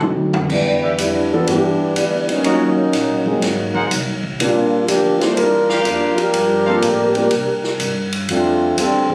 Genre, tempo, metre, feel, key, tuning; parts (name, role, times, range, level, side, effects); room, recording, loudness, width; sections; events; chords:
jazz, big band swing; 123 BPM; 4/4; swing 67% on 8ths; A4 = 441 Hz
dark upright piano; accompaniment; 0.0-7.3 s; E3 to A4; -23 LUFS; equal
upright bass; bass; 0.0-9.1 s; Ab1 to C3; -30 LUFS; equal
swinging big-band drum kit; drums; 0.0-9.1 s; crash cymbal, hi-hat, kick drum, ride cymbal, snare drum, toms; -26 LUFS; equal
warm trombone section; second line; 0.5-9.1 s; E3 to C5; -19 LUFS; equal
warm trumpet section; stabs; 0.8-6.8 s; Gb4 to Gb5; -24 LUFS; equal
moderate club reverb, RT60 0.6 s; recorded on a phone in the room, club reverb, compression; -17 LUFS; mono
0.5-9.1 A section
drum fill 0.0-0.5; trombone section solo 0.5-9.1
0.5 Em7; 2.4 Ebm7; 3.4 Ab9; 4.4 Bb6; 6.3 Gm11; 7.3 Csus2; 8.3 F69